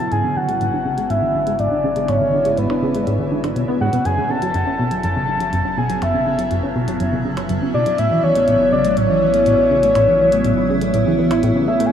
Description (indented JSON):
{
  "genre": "ambient, sequencer-driven space music",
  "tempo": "122 BPM",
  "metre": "4/4",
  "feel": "straight",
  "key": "unclear",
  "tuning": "A4 = 444 Hz",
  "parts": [
    { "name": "soft octave-layered synth lead", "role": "melody", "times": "0.0-11.9 s", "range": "B4 to A5", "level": "-18 LUFS", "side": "left 1 dB", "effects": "chorus, analog delay" },
    { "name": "evolving wavetable pad", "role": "sustained chords", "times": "0.0-11.9 s", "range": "C#3 to E4", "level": "-22 LUFS", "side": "right 1 dB", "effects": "phaser, built-in reverb" },
    { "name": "plucky analog bass", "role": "riff", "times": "0.0-11.9 s", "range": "F#2 to E4", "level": "-21 LUFS", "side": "equal", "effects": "ensemble chorus, analog delay" },
    { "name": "warm sub bass", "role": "bass", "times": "0.0-11.9 s", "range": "F#1 to A1", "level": "-34 LUFS", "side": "equal", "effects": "none" },
    { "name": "bubbling stepped-filter texture", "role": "texture", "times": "1.0-11.9 s", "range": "E5", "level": "-38 LUFS", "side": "right 2 dB", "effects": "chorus, built-in reverb" },
    { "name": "electronic hi-hat and percussion blips", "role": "percussion", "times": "0.1-11.9 s", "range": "none", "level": "-35 LUFS", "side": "right 2 dB", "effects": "analog delay" }
  ],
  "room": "wet huge ambient reverb, RT60 9.1 s",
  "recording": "small room ambience",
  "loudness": "-15 LUFS",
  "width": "side -8 dB against mid",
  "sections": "0.0-11.9 A section",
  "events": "fade-in on sub bass 0.0-11.9; fade-in on synth texture 0.0-11.9; fade-in on drum 0.0-11.9; filter sweep on analog synth bass 0.0-11.9",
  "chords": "0.1 G#dim; 4.1 F#m7; 8.0 A"
}